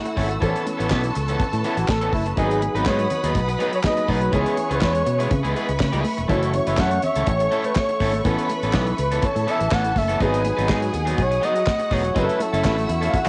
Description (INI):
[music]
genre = disco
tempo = 123 BPM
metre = 4/4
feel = straight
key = F# dorian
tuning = A4 = 440 Hz
[part]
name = breathy flugelhorn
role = melody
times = 0.0-13.3 s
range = E4 to F#5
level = -26 LUFS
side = equal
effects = cassette tape
[part]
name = rich studio string section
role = second line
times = 0.0-13.3 s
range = E4 to C#6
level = -32 LUFS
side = equal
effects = cassette tape
[part]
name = warm grand piano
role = accompaniment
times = 0.0-13.3 s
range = E3 to A4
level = -32 LUFS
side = equal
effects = cassette tape
[part]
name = clear studio string section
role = sustained chords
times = 0.0-13.3 s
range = G#4 to E6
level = -34 LUFS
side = equal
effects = cassette tape
[part]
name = electric guitar at the edge of break-up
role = accompaniment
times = 0.1-13.3 s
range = E3 to B4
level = -29 LUFS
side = equal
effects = cassette tape
[part]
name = damped 70s drum kit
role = drums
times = 0.1-13.3 s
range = handclaps, hi-hat, kick drum, snare drum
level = -28 LUFS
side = equal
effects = none
[part]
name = fingered electric bass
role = bass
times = 0.2-13.3 s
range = E1 to C#3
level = -27 LUFS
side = equal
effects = none
[part]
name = congas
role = percussion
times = 0.2-13.3 s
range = none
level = -34 LUFS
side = equal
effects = none
[sound]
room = light reverb, small room reverb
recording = home recording on cassette, nothing above 10.3 kHz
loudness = -21 LUFS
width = mono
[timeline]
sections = 0.0-13.3 A section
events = flugelhorn solo 0.0-13.3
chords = 0.4 Aadd9; 2.4 G#m7; 4.3 C#m7; 6.3 F#m7; 8.3 Aadd9; 10.2 G#m7; 12.2 F#m7